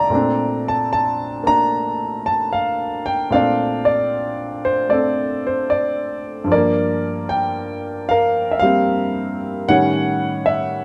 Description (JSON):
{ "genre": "solo jazz", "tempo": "75 BPM", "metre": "4/4", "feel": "swing 68% on 8ths", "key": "Bb major, G minor from 6.5 s", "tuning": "A4 = 440 Hz", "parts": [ { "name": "warm concert grand piano", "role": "solo", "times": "0.0-10.8 s", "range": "G2 to Bb5", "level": "-19 LUFS", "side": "equal", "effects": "none" } ], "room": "light reverb", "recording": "none", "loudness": "-19 LUFS", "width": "mono", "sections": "0.0-6.5 A section; 6.5-10.8 B section", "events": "none", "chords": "0.1 Bbmaj9; 6.5 Gm7; 9.7 A7#11", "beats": "| 0.11 0.91 1.71 2.51 | 3.30 4.10 4.90 5.70 | 6.50 7.29 8.09 8.88 | 9.68 10.47" }